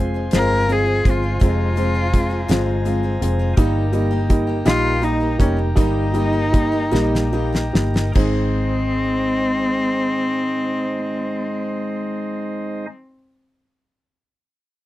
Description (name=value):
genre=six-eight pop ballad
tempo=48-56 BPM (dotted quarters)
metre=6/8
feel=straight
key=Ab major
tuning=A4 = 442 Hz
part: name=warm upright piano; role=accompaniment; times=0.0-12.9 s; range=F3 to Eb4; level=-23 LUFS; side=right 1 dB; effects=none
part: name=chamber organ, flutes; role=sustained chords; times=0.0-12.9 s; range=Ab3 to C6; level=-28 LUFS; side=right 2 dB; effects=none
part: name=picked steel-string acoustic guitar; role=arpeggios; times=0.0-13.0 s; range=F2 to Ab4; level=-29 LUFS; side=left 8 dB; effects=none
part: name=vintage muted fingered electric bass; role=bass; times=0.0-12.9 s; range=F1 to Bb1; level=-22 LUFS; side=equal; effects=none
part: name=clear cello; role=melody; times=0.3-12.9 s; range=C4 to Bb4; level=-22 LUFS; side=left 1 dB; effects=none
part: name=damped 70s drum kit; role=drums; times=0.3-8.4 s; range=crash cymbal, hi-hat, kick drum, snare drum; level=-17 LUFS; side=equal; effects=none
room=little or no reverb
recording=dry, close 1970s-style studio recording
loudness=-17 LUFS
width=side -15 dB against mid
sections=0.0-8.2 A section; 8.2-13.2 B section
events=slowing down 3.6-8.2; drum fill 6.9-8.2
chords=0.0 Fm; 3.6 Eb; 8.2 Ab